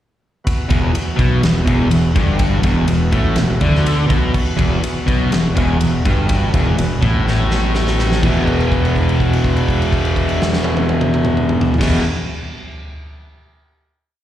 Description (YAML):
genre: hard rock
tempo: 124 BPM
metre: 4/4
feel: straight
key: unclear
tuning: A4 = 441 Hz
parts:
  - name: bright tonewheel organ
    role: sustained chords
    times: 0.4-12.0 s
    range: E3 to F#4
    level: -26 LUFS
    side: equal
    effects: wide subtle chorus
  - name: big rock drum kit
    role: drums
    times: 0.5-11.9 s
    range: crash cymbal, kick drum, ride cymbal, snare drum, toms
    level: -20 LUFS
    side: equal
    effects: none
  - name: distorted electric guitar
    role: riff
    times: 0.7-12.0 s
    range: E2 to E3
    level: -18 LUFS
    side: equal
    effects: distortion, slapback echo
  - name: fuzz fingered electric bass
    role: bass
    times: 0.7-12.0 s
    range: E1 to D2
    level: -18 LUFS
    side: equal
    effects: overdrive
room: small room reverb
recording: live gig heard through the venue's PA, recital hall reverb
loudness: -14 LUFS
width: side -12 dB against mid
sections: 0.5-8.2 riff; 8.2-12.1 final chord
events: drum fill 7.3-8.2; held note 8.2-11.8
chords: 0.5 E5